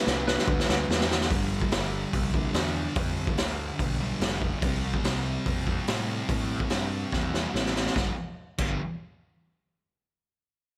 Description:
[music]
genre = garage rock duo or trio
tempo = 144 BPM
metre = 4/4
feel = straight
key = G mixolydian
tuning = A4 = 440 Hz
[part]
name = electric slide guitar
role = melody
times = 0.0-1.1 s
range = B4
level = -35 LUFS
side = equal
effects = none
[part]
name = thick fuzz guitar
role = riff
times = 0.0-8.8 s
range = G2 to C4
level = -34 LUFS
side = equal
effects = distortion
[part]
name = fuzz picked electric bass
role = bass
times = 0.1-8.8 s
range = F1 to A2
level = -35 LUFS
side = equal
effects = overdrive
[part]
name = raw garage drum kit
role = drums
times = 0.1-8.7 s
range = crash cymbal, hi-hat, kick drum, snare drum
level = -30 LUFS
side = equal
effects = none
[sound]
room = light reverb, small room ambience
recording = none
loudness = -28 LUFS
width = mono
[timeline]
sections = 0.0-1.3 A section; 1.3-8.0 B section; 8.0-9.6 C section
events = drum fill 0.0-1.3, 7.1-8.0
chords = 0.0 G; 1.3 G5; 4.6 C5; 8.0 G5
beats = 0.06 0.48 0.89 | 1.30 1.72 2.13 2.55 | 2.96 3.38 3.79 4.21 | 4.63 5.04 5.46 5.88 | 6.30 6.71 7.13 7.55 | 7.97 8.38

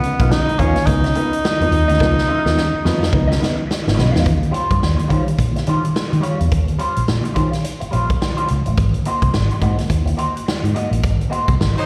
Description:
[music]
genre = funk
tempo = 106 BPM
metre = 4/4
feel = swing 60% on 16ths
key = Eb mixolydian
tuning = A4 = 440 Hz
[part]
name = breathy tenor saxophone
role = melody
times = 0.0-3.7 s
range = Cb4 to Eb4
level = -22 LUFS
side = equal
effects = slapback echo
[part]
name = electric guitar at the edge of break-up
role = accompaniment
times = 0.0-11.8 s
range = G3 to F5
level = -27 LUFS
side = equal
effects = wah, slapback echo
[part]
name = dark upright piano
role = stabs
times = 0.0-4.2 s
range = Db3 to Eb4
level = -26 LUFS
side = equal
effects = slapback echo
[part]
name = swinging big-band drum kit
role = drums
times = 0.0-11.9 s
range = hi-hat, kick drum, snare drum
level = -23 LUFS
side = equal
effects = none
[part]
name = vintage muted fingered electric bass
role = bass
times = 0.2-11.7 s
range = Ab1 to Eb3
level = -21 LUFS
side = equal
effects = none
[part]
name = clear horn section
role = second line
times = 11.8-11.9 s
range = Gb3 to C5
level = -22 LUFS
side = equal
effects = none
[sound]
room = little or no reverb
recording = live gig heard through the venue's PA, recital hall reverb, vinyl crackle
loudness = -18 LUFS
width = mono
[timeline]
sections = 0.0-4.3 A section; 4.3-11.9 B section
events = drum fill 2.0-4.3; band accent 11.0-11.9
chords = 0.0 Db9; 4.3 Eb13; 8.8 Ab9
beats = 0.32 0.88 1.44 | 2.01 2.57 3.13 3.70 | 4.26 4.82 5.39 5.95 | 6.52 7.08 7.64 8.21 | 8.78 9.34 9.90 10.47 | 11.03 11.60

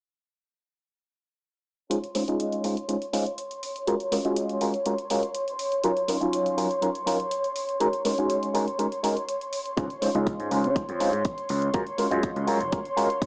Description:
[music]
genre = filtered disco house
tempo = 122 BPM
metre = 4/4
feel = straight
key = Db major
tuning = A4 = 440 Hz
[part]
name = tine electric piano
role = accompaniment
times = 1.9-13.1 s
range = Gb3 to Eb5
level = -28 LUFS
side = equal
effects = overdrive, phaser, sidechain pumping, low-pass filter, cassette tape
[part]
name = rich chamber string section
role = sustained chords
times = 1.9-13.3 s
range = Db5 to C6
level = -32 LUFS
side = equal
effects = sidechain pumping, low-pass filter, cassette tape
[part]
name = electronic hi-hat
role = drums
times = 1.9-13.3 s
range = none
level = -40 LUFS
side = equal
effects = cassette tape
[part]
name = gritty slap bass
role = bass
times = 9.8-12.7 s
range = Gb1 to Db3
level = -31 LUFS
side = equal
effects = overdrive, sidechain pumping, low-pass filter
[part]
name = electronic kick drum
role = drums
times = 9.8-13.3 s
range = none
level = -32 LUFS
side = equal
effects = cassette tape
[sound]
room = moderate studio reverb, RT60 0.6 s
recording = home recording on cassette, small speaker sound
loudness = -27 LUFS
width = mono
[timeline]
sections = 1.9-13.3 A section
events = filter sweep 1.9-13.3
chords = 1.9 Dbmaj7; 3.9 Gbmaj7; 5.6 Ebm9/Gb; 7.6 Ab7sus4; 9.8 Dbmaj7; 11.7 Gbmaj7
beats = | 1.91 2.40 2.89 3.38 | 3.87 4.37 4.86 5.35 | 5.84 6.33 6.83 7.32 | 7.81 8.30 8.79 9.28 | 9.78 10.27 10.76 11.25 | 11.74 12.23 12.73 13.22

